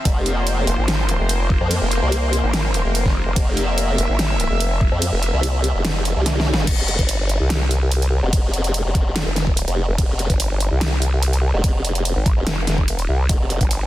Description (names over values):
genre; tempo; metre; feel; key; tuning
heavy wobble dubstep; 145 BPM; 4/4; half-time; F harmonic minor; A4 = 440 Hz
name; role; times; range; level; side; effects
lush unison pad; sustained chords; 0.0-6.7 s; F3 to E5; -26 LUFS; equal; chorus, sidechain pumping
formant-sweep wobble bass; bass; 0.1-13.6 s; F1 to F2; -20 LUFS; equal; chorus, overdrive
dubstep drum kit; drums; 0.1-13.8 s; crash cymbal, hi-hat, ride cymbal, snare drum; -24 LUFS; equal; overdrive
electronic kick drum; drums; 0.1-13.7 s; none; -19 LUFS; equal; overdrive
vowel-sweep wobble bass; bass; 0.7-13.9 s; F1 to C2; -19 LUFS; equal; chorus, overdrive
room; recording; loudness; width
little or no reverb; dense, heavily limited modern master; -17 LUFS; side -14 dB against mid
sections
0.0-6.7 A section; 6.7-13.9 A section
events
drop 0.0-6.7, 6.7-13.9; kick drops out 5.8-6.7; drum fill 6.3-6.7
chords
0.0 F5